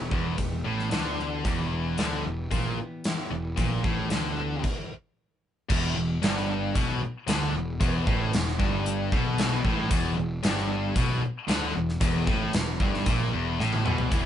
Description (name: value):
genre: classic rock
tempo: 114 BPM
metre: 4/4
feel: straight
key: E minor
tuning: A4 = 440 Hz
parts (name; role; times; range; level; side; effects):
- picked steel-string acoustic guitar; accompaniment; 0.0-4.7, 14.1-14.3 s; E2 to G4; -37 LUFS; left 2 dB; none
- sludgy distorted guitar; riff; 0.0-14.3 s; E2 to E4; -31 LUFS; right 4 dB; overdrive
- tight distorted guitar; riff; 0.0-14.3 s; E2 to E4; -30 LUFS; left 6 dB; distortion
- fuzz picked electric bass; bass; 0.0-14.3 s; E1 to D2; -32 LUFS; equal; overdrive
- gated 80s drum kit; drums; 0.1-14.2 s; crash cymbal, hi-hat, kick drum, snare drum, toms; -28 LUFS; equal; none
room: moderate studio ambience, RT60 0.4 s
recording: band playing live in one room, nothing above 10.8 kHz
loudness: -24 LUFS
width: side -10 dB against mid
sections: 0.0-5.7 A section; 5.7-14.1 B section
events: stop 4.6-5.7; drum fill 13.6-14.1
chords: 0.0 Em